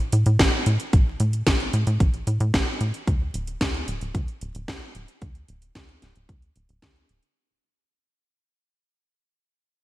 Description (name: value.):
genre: italo disco.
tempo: 112 BPM.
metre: 4/4.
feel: straight.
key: unclear.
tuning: A4 = 440 Hz.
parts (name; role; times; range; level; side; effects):
tight sequencer bass; bass; 0.1-7.2 s; D1 to A2; -23 LUFS; equal; none.
house drum kit; drums; 0.1-7.3 s; hi-hat, snare drum; -26 LUFS; equal; gated reverb.
electronic kick drum; drums; 0.4-6.9 s; none; -22 LUFS; equal; none.
room: little or no reverb.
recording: bright 1980s-style digital production, vinyl crackle.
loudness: -20 LUFS.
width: side -17 dB against mid.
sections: 0.0-7.4 A section.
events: fade-out 0.0-7.4.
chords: none.